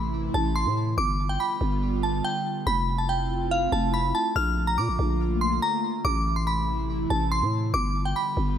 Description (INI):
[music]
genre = hip hop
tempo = 142 BPM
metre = 4/4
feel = half-time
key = A minor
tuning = A4 = 438 Hz
[part]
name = glassy synth bell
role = melody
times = 0.0-8.6 s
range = F5 to F6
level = -27 LUFS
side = equal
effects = chorus, ping-pong delay
[part]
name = airy breathy pad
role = sustained chords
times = 0.0-8.6 s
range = C3 to F4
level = -31 LUFS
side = right 2 dB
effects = chorus
[part]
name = growling 808-style bass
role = bass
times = 0.0-8.6 s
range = F1 to Bb2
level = -26 LUFS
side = equal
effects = none
[sound]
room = light reverb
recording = none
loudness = -23 LUFS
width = side -9 dB against mid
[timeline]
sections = 0.0-8.6 A section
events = none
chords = 0.0 Am; 1.0 G7; 2.7 Fmaj7; 4.4 Bbmaj7; 6.0 Am; 7.7 G7